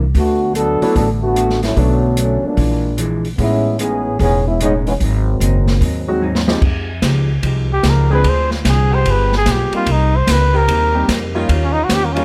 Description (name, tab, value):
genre	jazz, big band swing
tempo	148 BPM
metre	4/4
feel	swing 66% on 8ths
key	F minor from 6.6 s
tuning	A4 = 440 Hz
part	hollow-body jazz guitar	accompaniment	0.0-12.2 s	G#2 to Ab4	-27 LUFS	equal	none
part	upright bass	bass	0.0-12.2 s	E1 to F2	-19 LUFS	equal	none
part	open jazz drum kit	drums	0.1-12.2 s	crash cymbal, hi-hat, kick drum, ride cymbal, snare drum	-23 LUFS	equal	none
part	mellow trombone section	second line	0.2-6.2 s	D3 to A4	-20 LUFS	equal	none
part	warm grand piano	accompaniment	0.8-2.6, 6.1-12.2 s	E#3 to Ab4	-23 LUFS	equal	none
part	breathy trumpet	melody	7.7-12.2 s	Bb3 to C5	-20 LUFS	equal	none
part	mellow saxophone section	sustained chords	8.1-12.2 s	Eb3 to Ab4	-27 LUFS	equal	none
room	light reverb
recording	none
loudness	-16 LUFS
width	mono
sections	0.0-6.6 A section; 6.6-12.2 B section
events	trombone section solo 0.0-6.6; drum fill 6.2-6.6; trumpet solo 6.6-12.2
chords	0.1 D6; 1.8 Bm7; 2.6 A#7#11; 3.4 Amaj9#11; 5.0 G#7; 6.6 Fm9; 8.2 Dm7b5; 9.1 G7b9; 9.9 Cm7; 11.5 Eb9